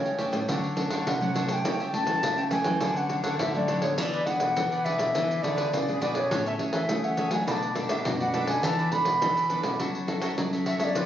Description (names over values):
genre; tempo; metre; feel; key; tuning
samba and choro; 103 BPM; 4/4; straight; A major; A4 = 440 Hz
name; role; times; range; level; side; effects
wooden flute; melody; 0.0-11.1 s; C#5 to B5; -28 LUFS; equal; plate reverb
cavaquinho; accompaniment; 0.0-11.1 s; D4 to G#5; -36 LUFS; right 3 dB; none
nylon-string guitar; accompaniment; 0.0-11.1 s; F#2 to A4; -32 LUFS; left 1 dB; none
nylon-string guitar; bass; 0.0-11.1 s; A2 to A3; -32 LUFS; equal; none
pandeiro; percussion; 0.1-11.1 s; none; -31 LUFS; equal; none
room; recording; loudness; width
moderate studio reverb, RT60 0.5 s; recorded on a phone in the room, studio reverb, compression, nothing above 7.6 kHz; -24 LUFS; side -10 dB against mid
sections
0.0-11.1 A section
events
none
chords
0.5 Dmaj7; 1.7 A7/C#; 2.8 Dmaj7; 4.0 E7; 6.3 Amaj7; 7.5 Bm7; 8.6 E7sus4; 9.8 F#m7